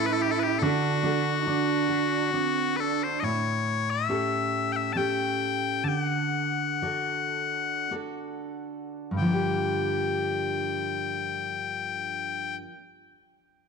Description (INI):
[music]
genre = celtic folk, Celtic slow air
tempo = 44-72 BPM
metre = 3/4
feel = rubato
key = G minor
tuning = A4 = 440 Hz
[part]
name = loud bright bagpipes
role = melody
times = 0.0-12.6 s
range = F#4 to A5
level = -28 LUFS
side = left 8 dB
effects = none
[part]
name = dark cello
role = second line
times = 0.0-3.2 s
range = C4 to E4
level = -29 LUFS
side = right 10 dB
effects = none
[part]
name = fingerpicked steel-string acoustic guitar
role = accompaniment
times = 0.0-12.8 s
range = G2 to A4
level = -29 LUFS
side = right 2 dB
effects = none
[sound]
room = moderate echo chamber reverb, RT60 2.4 s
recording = 1960s-style stereo with parts hard left and right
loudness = -25 LUFS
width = side -5 dB against mid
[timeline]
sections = 0.0-3.2 A section; 3.2-9.2 B section; 9.2-13.0 C section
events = slowing down 3.2-9.2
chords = 0.0 A; 0.6 D; 3.2 A7; 5.8 D; 9.2 Gm7